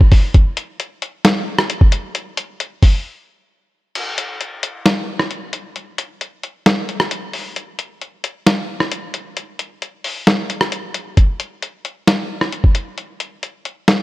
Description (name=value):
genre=hip hop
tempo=133 BPM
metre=4/4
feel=half-time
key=none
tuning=none
part: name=lo-fi sampler-style drum kit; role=drums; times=0.0-14.0 s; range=crash cymbal, hi-hat, kick drum, rim click, snare drum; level=-15 LUFS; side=equal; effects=none
room=light reverb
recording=none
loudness=-16 LUFS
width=side -18 dB against mid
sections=0.0-4.0 A section; 4.0-14.0 B section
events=break 3.1-4.0, 4.0-11.2; kick muted 10.3-11.2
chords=none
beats=| 0.34 0.80 1.25 1.70 | 2.15 2.60 3.05 3.50 | 3.95 4.41 4.86 5.31 | 5.76 6.21 6.66 7.11 | 7.56 8.01 8.46 8.92 | 9.37 9.82 10.27 10.72 | 11.17 11.62 12.07 12.53 | 12.98 13.43 13.88